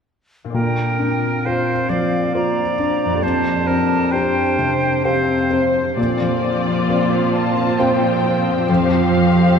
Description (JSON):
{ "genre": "cinematic", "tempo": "66 BPM", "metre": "3/4", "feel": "rubato", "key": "unclear", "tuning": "A4 = 442 Hz", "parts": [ { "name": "concert harp", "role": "arpeggios", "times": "0.4-9.6 s", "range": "F2 to F5", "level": "-23 LUFS", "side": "left 2 dB", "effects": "none" }, { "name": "bright concert flute", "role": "second line", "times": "0.5-5.7 s", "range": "F5 to Bb5", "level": "-26 LUFS", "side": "right 1 dB", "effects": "none" }, { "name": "bright oboe", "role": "second line", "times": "0.5-5.6 s", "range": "Bb4 to D5", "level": "-24 LUFS", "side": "right 2 dB", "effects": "none" }, { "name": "mellow clarinet", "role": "second line", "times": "0.5-5.6 s", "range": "Bb3 to D4", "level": "-26 LUFS", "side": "equal", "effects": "none" }, { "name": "felt-muted upright piano", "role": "accompaniment", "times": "0.5-9.6 s", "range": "F2 to C5", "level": "-21 LUFS", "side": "left 1 dB", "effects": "none" }, { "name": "muted studio violin section", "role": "melody", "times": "5.5-9.6 s", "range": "C5 to A5", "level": "-24 LUFS", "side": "left 4 dB", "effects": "none" }, { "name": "muted studio violin section", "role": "second line", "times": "6.0-9.6 s", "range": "F4 to C5", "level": "-23 LUFS", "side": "left 1 dB", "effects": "none" }, { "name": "muted studio viola section", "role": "accompaniment", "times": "6.0-9.6 s", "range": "F3 to C4", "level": "-23 LUFS", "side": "right 1 dB", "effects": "none" }, { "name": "muted studio cello section", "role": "bass", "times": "6.0-9.6 s", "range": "F2 to Bb2", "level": "-21 LUFS", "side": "right 4 dB", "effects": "none" } ], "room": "wet cathedral reverb, RT60 5.9 s", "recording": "recorded in a church or concert hall", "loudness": "-16 LUFS", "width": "side -6 dB against mid", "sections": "0.5-6.0 A section; 6.0-9.6 B section", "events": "none", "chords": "0.5 Bbadd9; 3.2 Fsus2; 6.0 Bbadd9; 8.7 Fsus2", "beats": "| 0.54 1.45 2.34 | 3.23 4.13 5.04 | 5.98 6.89 7.80 | 8.69" }